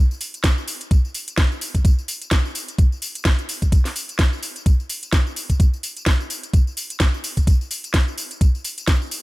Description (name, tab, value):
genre	house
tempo	128 BPM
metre	4/4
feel	swing 57% on 16ths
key	none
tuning	none
part	garage drum kit	drums	0.1-9.2 s	hi-hat, snare drum, tambourine	-25 LUFS	equal	none
part	electronic kick drum	drums	0.4-9.0 s	none	-16 LUFS	equal	none
room	little or no reverb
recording	none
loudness	-18 LUFS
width	side -20 dB against mid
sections	0.0-9.2 A section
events	none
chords	none